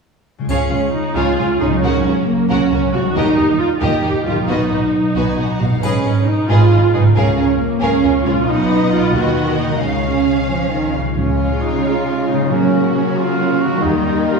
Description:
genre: cinematic, heroic adventure film score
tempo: 90 BPM (dotted quarters)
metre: 6/8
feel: straight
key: Db mixolydian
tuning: A4 = 440 Hz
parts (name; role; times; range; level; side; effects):
- concert harp; arpeggios; 0.4-14.4 s; Ab2 to F5; -22 LUFS; left 3 dB; none
- warm symphonic violin section; melody; 0.5-14.4 s; Gb4 to Ab5; -28 LUFS; left 3 dB; none
- rich symphonic violin section; second line; 0.5-14.4 s; Db4 to F5; -24 LUFS; left 1 dB; none
- warm symphonic viola section; accompaniment; 0.5-14.4 s; Gb3 to G4; -18 LUFS; right 3 dB; none
- warm symphonic cello section; bass; 0.5-14.4 s; Ab2 to F3; -20 LUFS; right 3 dB; none
- warm symphonic double bass section; bass; 0.5-11.6, 13.8-14.2 s; Ab1 to Eb2; -21 LUFS; right 1 dB; none
- triangle; percussion; 0.5-1.3, 5.8-6.7 s; none; -42 LUFS; left 2 dB; none
- mellow French horn section; sustained chords; 11.2-14.4 s; Gb3 to G4; -22 LUFS; left 4 dB; none
- mellow trumpet section; stabs; 11.2-14.4 s; Db4 to Gb4; -21 LUFS; right 2 dB; none
- timpani; percussion; 11.2-13.1 s; Db3; -28 LUFS; right 1 dB; none
room: wet scoring stage reverb, RT60 1.6 s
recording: heard from further back in the room, studio ambience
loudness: -14 LUFS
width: side -4 dB against mid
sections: 0.5-11.2 A section; 11.2-14.4 A section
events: none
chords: 0.5 Db; 1.8 Gb/Db; 3.2 Eb; 4.5 Cb; 5.8 Abm; 7.2 Db6; 8.5 Cb; 9.8 Db; 12.5 Gb/Db; 13.8 Eb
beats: | 0.49 1.16 | 1.83 2.49 | 3.16 3.82 | 4.48 5.16 | 5.83 6.50 | 7.16 7.82 | 8.48 9.15 | 9.82 10.49 | 11.17 11.84 | 12.51 13.17 | 13.83

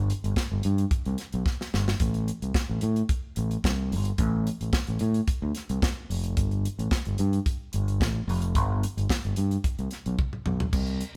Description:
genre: disco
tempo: 110 BPM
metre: 4/4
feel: straight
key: unclear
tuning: A4 = 443 Hz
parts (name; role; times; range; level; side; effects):
- overdriven fingered electric bass; bass; 0.0-11.0 s; F1 to A2; -29 LUFS; equal; none
- tight funk drum kit; drums; 0.1-11.1 s; crash cymbal, hi-hat, kick drum, snare drum, toms; -31 LUFS; equal; none
room: moderate stone room reverb, RT60 1.0 s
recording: band playing live in one room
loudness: -27 LUFS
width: mono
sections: 0.0-10.7 A section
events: drum fill 1.5-2.0, 10.2-10.7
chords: none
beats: 0.37 0.91 1.46 | 2.00 2.55 3.10 3.64 | 4.19 4.73 5.28 5.82 | 6.37 6.91 7.46 8.00 | 8.55 9.09 9.64 10.18 | 10.73

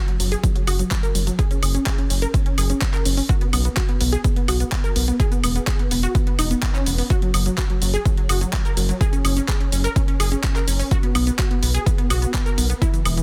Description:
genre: progressive house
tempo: 126 BPM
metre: 4/4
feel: straight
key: F# major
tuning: A4 = 439 Hz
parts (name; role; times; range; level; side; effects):
- unison pluck; arpeggios; 0.0-13.2 s; E3 to A#4; -28 LUFS; equal; cassette tape, sidechain pumping, tape echo
- deep house drum kit; drums; 0.1-13.2 s; handclaps, hi-hat, shaker, woodblock; -29 LUFS; equal; studio reverb
- round analog bass; bass; 0.2-13.2 s; E1 to B1; -24 LUFS; equal; sidechain pumping
- electronic kick drum; drums; 0.4-12.9 s; none; -23 LUFS; equal; studio reverb
room: little or no reverb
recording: dense, heavily limited modern master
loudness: -20 LUFS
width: mono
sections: 0.0-13.2 A section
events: none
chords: 0.0 F#5; 3.3 B5; 5.2 E5; 7.1 F#5; 10.9 B5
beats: 0.44 0.91 | 1.39 1.86 2.34 2.82 | 3.29 3.77 4.25 4.72 | 5.20 5.67 6.15 6.63 | 7.10 7.58 8.05 8.53 | 9.01 9.48 9.96 10.44 | 10.91 11.39 11.87 12.34 | 12.82

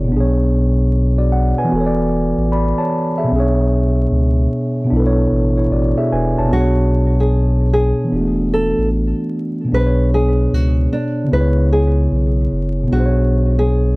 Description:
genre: lo-fi hip hop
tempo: 75 BPM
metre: 4/4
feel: swing 65% on 16ths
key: B dorian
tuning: A4 = 440 Hz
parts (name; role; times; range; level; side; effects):
- mellow tine electric piano; accompaniment; 0.0-14.0 s; B2 to B5; -16 LUFS; equal; cassette tape
- warm sub bass; bass; 0.0-14.0 s; E1 to C#2; -17 LUFS; equal; none
- nylon-string guitar; melody; 6.5-14.0 s; D4 to B4; -21 LUFS; equal; none
room: light reverb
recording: dry, gritty hardware recording, vinyl crackle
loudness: -14 LUFS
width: side -24 dB against mid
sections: 0.0-6.5 A section; 6.5-14.0 A section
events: none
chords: 0.1 Bm69; 1.7 E7sus4; 3.3 Bm69; 4.9 Bm11; 6.5 Bm69; 8.1 E7sus4; 9.7 Bm69; 11.3 C#m7; 12.9 Bm69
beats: | 0.11 0.91 1.71 2.51 | 3.31 4.11 4.91 5.71 | 6.51 7.31 8.11 8.91 | 9.71 10.51 11.31 12.11 | 12.91 13.71

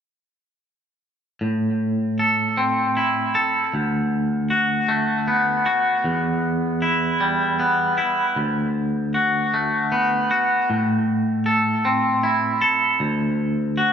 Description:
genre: rock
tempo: 52 BPM (dotted quarters)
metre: 6/8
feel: straight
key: D mixolydian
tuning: A4 = 440 Hz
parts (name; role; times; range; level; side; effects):
- twangy electric guitar; arpeggios; 1.4-13.9 s; D2 to A4; -18 LUFS; equal; harmonic tremolo, analog delay
room: wet scoring stage reverb, RT60 1.6 s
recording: none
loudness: -18 LUFS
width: side -7 dB against mid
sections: 1.4-13.9 A section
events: none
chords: 1.4 Am; 3.7 D6; 6.1 Em; 8.4 D6; 10.7 Am; 13.0 D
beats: | 1.41 2.57 | 3.73 4.89 | 6.05 7.21 | 8.37 9.53 | 10.69 11.85 | 13.01

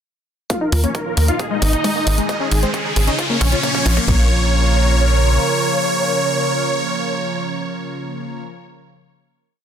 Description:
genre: uplifting trance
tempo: 134 BPM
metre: 4/4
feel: straight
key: Bb minor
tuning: A4 = 440 Hz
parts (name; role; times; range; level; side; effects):
- supersaw chords; melody; 0.5-8.4 s; C4 to F5; -20 LUFS; right 2 dB; phaser, sidechain pumping, low-pass filter, ping-pong delay
- lush unison pad; sustained chords; 0.5-8.4 s; Bb2 to Bb4; -24 LUFS; equal; chorus, phaser, sidechain pumping
- tight sequenced synth; arpeggios; 0.5-4.3 s; Ab3 to F4; -25 LUFS; left 4 dB; chorus, sidechain pumping, dub echo
- big-room dance drum kit; drums; 0.5-4.2 s; crash cymbal, hi-hat; -26 LUFS; equal; sidechain pumping on hats, small room ambience, sidechain pumping on cymbals
- electronic kick drum; drums; 0.5-4.2 s; none; -23 LUFS; equal; high-pass filter on kick, small room ambience
- riser; sound effects; 1.6-4.1 s; none; -26 LUFS; left 1 dB; none
- tight sequencer bass; bass; 0.7-5.4 s; Ab1 to Eb2; -16 LUFS; equal; sidechain pumping
room: light reverb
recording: dense, heavily limited modern master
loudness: -15 LUFS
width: side -8 dB against mid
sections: 0.5-4.1 build; 4.1-7.7 final chord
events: build-up 0.5-4.1; filter sweep on supersaw synth 0.5-4.1; filter sweep on synth arpeggio sound 0.5-4.1; riser 1.6-4.1; drum fill 2.3-4.1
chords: 0.5 Ebsus2; 1.4 Absus2; 2.3 Dbsus2/Ab; 3.2 Bbm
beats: | 0.50 0.95 1.40 1.84 | 2.29 2.74 3.19 3.63 | 4.08 4.53 4.98 5.42 | 5.87 6.32 6.77 7.22

